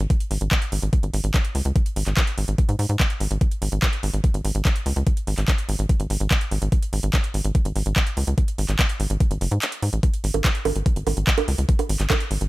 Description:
psychedelic trance; 145 BPM; 4/4; straight; A4 = 440 Hz
tight sequencer bass; bass; 0.0-12.5 s; F#1 to G#2; -22 LUFS; equal
garage drum kit; drums; 0.0-12.5 s; bongos, handclaps, hi-hat; -26 LUFS; right 2 dB; overdrive
electronic kick drum; drums; 0.1-12.2 s; -20 LUFS; equal; overdrive
little or no reverb; -20 LUFS; side -19 dB against mid
0.0-12.5 A section
break 9.6-10.0
| 0.10 0.52 0.93 1.34 | 1.76 2.17 2.58 3.00 | 3.41 3.83 4.24 4.65 | 5.07 5.48 5.89 6.31 | 6.72 7.14 7.55 7.96 | 8.38 8.79 9.21 9.62 | 10.03 10.45 10.86 11.27 | 11.69 12.10

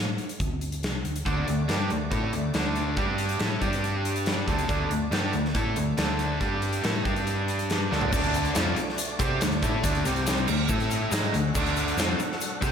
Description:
classic rock; 140 BPM; 4/4; straight; D mixolydian; A4 = 439 Hz
hollow-body short-scale fingered electric bass; bass; 0.0-12.7 s; C2 to C3; -31 LUFS; equal
huge arena drum kit; drums; 0.2-12.7 s; crash cymbal, hi-hat, kick drum, snare drum, toms; -28 LUFS; equal
tonewheel organ; sustained chords; 1.3-12.7 s; A3 to F#5; -37 LUFS; right 1 dB; slow rotary speaker
crunchy overdriven guitar; riff; 1.3-12.7 s; C3 to C5; -30 LUFS; right 8 dB; spring reverb, slapback echo
overdriven electric guitar; riff; 1.3-12.7 s; C3 to C5; -30 LUFS; left 8 dB
tube shaker; percussion; 8.1-12.7 s; -40 LUFS; left 5 dB
wet recital hall reverb, RT60 1.6 s, small room ambience; big arena sound; -24 LUFS; side -7 dB against mid
0.0-8.1 A section; 8.1-12.7 B section
drum fill 7.9
0.0 D; 3.0 G5; 3.4 A5; 3.6 G5; 4.5 D; 6.4 G5; 6.8 A5; 7.1 G5; 7.9 D5; 8.1 D; 10.1 C5; 10.5 D5; 10.7 A5; 11.1 D
0.40 0.83 | 1.26 1.69 2.12 2.55 | 2.98 3.41 3.84 4.27 | 4.70 5.12 5.55 5.98 | 6.41 6.84 7.27 7.70 | 8.13 8.56 8.99 9.41 | 9.84 10.27 10.70 11.13 | 11.55 11.98 12.41

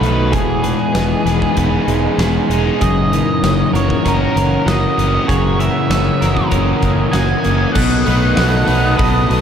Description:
rock, shoegaze and dream pop; 97 BPM; 4/4; straight; A4 = 440 Hz
octave-fuzz lead guitar; melody; 0.0-9.4 s; G#4 to G#5; -21 LUFS; equal; distortion, diffuse ambient delay
deep dark ambient pad; sustained chords; 0.0-9.4 s; D#4 to D#6; -24 LUFS; equal; chorus, built-in reverb
twelve-string electric guitar; arpeggios; 0.0-9.4 s; F#4 to D#5; -26 LUFS; right 4 dB; analog chorus, diffuse ambient delay
crunchy overdriven guitar; riff; 0.0-9.4 s; F#2 to D#4; -19 LUFS; left 8 dB; wide subtle chorus
overdriven electric guitar; riff; 0.0-9.4 s; E2 to G#4; -20 LUFS; right 7 dB; reverse reverb
fuzz fingered electric bass; bass; 0.0-9.4 s; E1 to B1; -18 LUFS; equal; overdrive
huge arena drum kit; drums; 0.0-9.4 s; crash cymbal, hi-hat, kick drum, snare drum; -22 LUFS; equal
moderate lush hall reverb, RT60 2.0 s, small room ambience; dreamy mix soaked in reverb; -12 LUFS; side -8 dB against mid
0.0-7.8 A section; 7.8-9.4 B section
0.3 Emaj7; 2.8 F#7; 7.8 B7
| 0.33 0.95 1.57 2.19 | 2.80 3.42 4.04 4.66 | 5.28 5.90 6.52 7.13 | 7.75 8.37 8.99

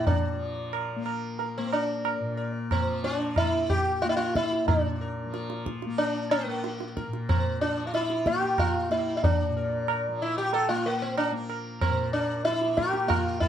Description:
indian classical, Hindustani; 92 BPM; 7/4; straight; Bb raga yaman; A4 = 438 Hz
sitar; melody; 0.0-13.5 s; Bb3 to Bb4; -27 LUFS; equal; slapback echo
tanpura; drone; 0.0-13.5 s; Bb2 to Bb3; -34 LUFS; left 2 dB
tabla; percussion; 0.1-13.5 s; -29 LUFS; right 2 dB
light reverb; dark, warm production; -25 LUFS; side -10 dB against mid
0.0-13.5 A section
speeding up 0.0-13.5
| 0.07 0.73 1.39 2.05 2.71 3.37 4.02 | 4.68 5.34 5.99 6.64 7.29 7.94 8.59 | 9.24 9.89 10.53 11.17 11.81 12.46 13.09

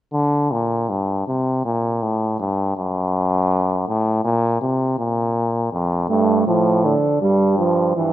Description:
classical, imitative canzona for brass ensemble; 81 BPM; 4/4; straight; G minor; A4 = 439 Hz
clear euphonium; bass; 0.1-8.1 s; F2 to D3; -19 LUFS; left 1 dB
warm euphonium; accompaniment; 6.1-8.1 s; D3 to A3; -16 LUFS; right 3 dB
light reverb; -17 LUFS; side -13 dB against mid
0.0-8.1 A section
0.0 Gm; 1.3 C5; 2.8 F#m; 4.3 Bbsus2; 5.7 Dm/F; 7.2 G5
0.51 1.27 2.03 | 2.77 3.52 4.25 4.99 | 5.72 6.47 7.21 7.96

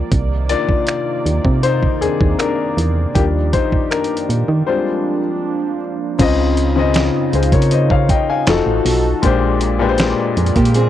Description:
contemporary R&B; 79 BPM; 4/4; straight; A4 = 440 Hz
warm baby grand piano; accompaniment; 0.0-10.9 s; Bb2 to Ab5; -17 LUFS; left 6 dB; cassette tape
warm analog pad; sustained chords; 0.0-10.9 s; C3 to D5; -24 LUFS; right 9 dB; lush chorus, cassette tape
nylon-string guitar; arpeggios; 0.0-0.1, 10.6-10.9 s; Bb3 to Ab4; -18 LUFS; right 3 dB; cassette tape
solid FM bass; bass; 0.0-10.9 s; F1 to Eb3; -17 LUFS; right 1 dB
dusty soul sampler-style drum kit; drums; 0.1-10.9 s; crash cymbal, finger snaps, hi-hat, kick drum, snare drum; -18 LUFS; right 1 dB
light reverb; home recording on cassette; -14 LUFS; side -12 dB against mid
0.0-6.2 A section; 6.2-10.9 B section
grand piano solo 0.0-6.2; break 4.7-6.2
0.1 Cm9; 3.2 Ebmaj7; 4.7 Bb13; 6.2 Dbmaj9; 8.5 F7b9; 9.2 Bb13
| 0.12 0.88 1.64 2.40 | 3.16 3.92 4.67 5.43 | 6.19 6.95 7.71 8.47 | 9.23 9.99 10.75

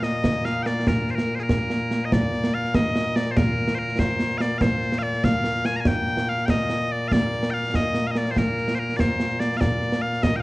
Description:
scottish traditional, Scottish pipe music; 96 BPM (dotted quarters); 6/8; straight; Bb major; A4 = 441 Hz
loud bright bagpipes; melody; 0.0-10.4 s; Bb2 to Bb5; -24 LUFS; left 1 dB
concert snare drum and concert bass drum; drums; 0.0-10.3 s; -23 LUFS; equal
moderate recital hall reverb, RT60 1.3 s; worn, warbling old tape, cassette tape, warbly pitch drift; -21 LUFS; side -20 dB against mid
0.0-2.1 A section; 2.1-10.4 B section
0.24 | 0.87 1.50 | 2.12 2.75 | 3.37 4.00 | 4.62 5.25 | 5.87 6.50 | 7.12 7.75 | 8.37 8.99 | 9.62 10.24

